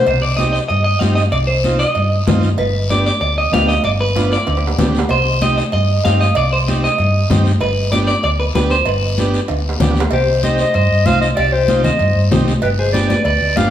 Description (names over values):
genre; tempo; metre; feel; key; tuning
latin, cumbia; 191 BPM; 4/4; straight; C harmonic minor; A4 = 438 Hz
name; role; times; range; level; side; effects
clear clarinet; melody; 0.0-0.1, 10.1-13.7 s; B4 to F5; -17 LUFS; left 2 dB; none
clean electric guitar; second line; 0.1-13.7 s; G4 to F5; -19 LUFS; right 1 dB; none
hollow-body short-scale fingered electric bass; bass; 0.1-13.7 s; G1 to G2; -17 LUFS; equal; none
congas; percussion; 0.1-13.7 s; none; -21 LUFS; left 2 dB; none
cowbell and timbales; percussion; 0.1-13.7 s; none; -26 LUFS; right 4 dB; none
guiro; percussion; 0.1-13.7 s; none; -29 LUFS; left 4 dB; none
combo organ; accompaniment; 0.4-13.7 s; B3 to G4; -23 LUFS; right 3 dB; none
room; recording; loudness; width
wet large studio reverb, RT60 1.4 s; band playing live in one room; -13 LUFS; side -11 dB against mid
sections
0.1-10.1 A section; 10.1-13.7 B section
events
clean electric guitar solo 0.1-10.1; drum fill 4.2-5.1, 9.5-10.1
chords
0.1 Cm; 2.6 G7; 5.1 Cm; 7.6 G; 10.1 Cm; 12.6 G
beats
| 0.07 0.38 0.70 1.01 | 1.33 1.64 1.96 2.27 | 2.58 2.90 3.21 3.53 | 3.84 4.16 4.47 4.78 | 5.10 5.41 5.73 6.04 | 6.35 6.67 6.98 7.30 | 7.61 7.92 8.24 8.55 | 8.87 9.18 9.49 9.81 | 10.12 10.43 10.75 11.06 | 11.37 11.69 12.00 12.31 | 12.63 12.94 13.26 13.57